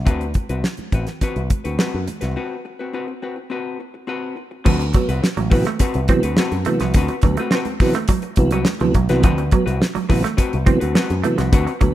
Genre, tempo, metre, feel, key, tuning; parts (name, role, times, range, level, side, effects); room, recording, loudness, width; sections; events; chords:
funk; 105 BPM; 4/4; straight; D mixolydian; A4 = 440 Hz
picked electric bass with an envelope filter; bass; 0.0-11.9 s; A1 to F#2; -22 LUFS; equal
vintage hollow-body jazz guitar; accompaniment; 0.1-11.9 s; C4 to B4; -26 LUFS; left 4 dB
damped 70s drum kit; drums; 0.1-11.9 s; crash cymbal, hi-hat, kick drum, snare drum; -18 LUFS; equal
congas; percussion; 0.1-11.9 s; -33 LUFS; right 6 dB
semi-hollow electric guitar; riff; 4.7-11.9 s; F3 to C4; -25 LUFS; right 8 dB
mellow tonewheel organ; stabs; 5.0-11.9 s; C3 to B3; -22 LUFS; right 2 dB; chorus vibrato, fast rotary speaker
studio reverb; rough home demo mix; -17 LUFS; side -13 dB against mid
0.0-4.7 A section; 4.7-11.9 B section
break 2.4-4.7
0.0 D6 (rootless); 4.7 D13